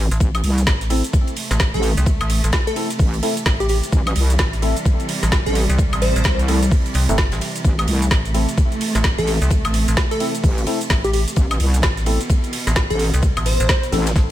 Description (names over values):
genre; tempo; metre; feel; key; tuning
bass house; 129 BPM; 4/4; swing 61% on 16ths; A minor; A4 = 441 Hz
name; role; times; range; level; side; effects
wobble bass; bass; 0.0-14.1 s; A1 to C2; -18 LUFS; equal; chorus, tube saturation, sidechain pumping
metallic FM bass; bass; 0.1-14.3 s; G1 to C2; -20 LUFS; equal; tube saturation, sidechain pumping
damped 70s drum kit; drums; 0.1-14.3 s; hi-hat, ride cymbal, snare drum; -34 LUFS; left 2 dB; sidechain pumping on cymbals, high-pass filter on cymbals, studio ambience, sidechain pumping on hats, high-pass filter on hats, high-pass filter on snare, high-pass filter on room
garage drum kit; drums; 0.1-14.3 s; cabasa, hi-hat, ride cymbal, snare drum, woodblock; -24 LUFS; right 1 dB; overdrive, studio ambience
clear symphonic string section; sustained chords; 0.2-14.3 s; B2 to A3; -27 LUFS; right 2 dB; sidechain pumping
electronic kick drum; drums; 0.2-14.3 s; none; -18 LUFS; equal; overdrive, studio ambience
percussive organ stab; stabs; 0.9-14.1 s; A3 to A4; -26 LUFS; left 2 dB; lush chorus, sidechain pumping, tape echo
plucky unison lead; melody; 1.7-6.4, 9.2-13.8 s; G4 to C5; -25 LUFS; equal; tape echo
room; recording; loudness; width
studio ambience; none; -16 LUFS; side -13 dB against mid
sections
0.0-14.3 A section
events
none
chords
0.0 Am